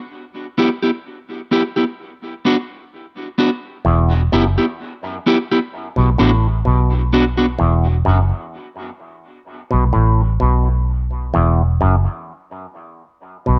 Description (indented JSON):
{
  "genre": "reggae",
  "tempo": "64 BPM",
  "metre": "4/4",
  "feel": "straight",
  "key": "E minor",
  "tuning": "A4 = 441 Hz",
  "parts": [
    { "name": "clean electric guitar", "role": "accompaniment", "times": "0.6-7.5 s", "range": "B3 to G4", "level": "-20 LUFS", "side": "equal", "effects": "dub echo" },
    { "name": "auto-wah clav", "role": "riff", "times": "3.8-13.6 s", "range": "E2 to B2", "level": "-23 LUFS", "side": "equal", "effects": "overdrive, dub echo" },
    { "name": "vintage muted fingered electric bass", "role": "bass", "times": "3.9-13.6 s", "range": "E1 to B1", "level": "-18 LUFS", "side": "equal", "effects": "none" }
  ],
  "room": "light reverb",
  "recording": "none",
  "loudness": "-17 LUFS",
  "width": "mono",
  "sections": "0.0-3.9 A section; 3.9-13.6 B section",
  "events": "none",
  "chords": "0.1 Em; 2.0 Bm; 3.9 Em; 5.7 Bm; 7.6 Esus2; 9.5 Asus2; 11.3 Esus2"
}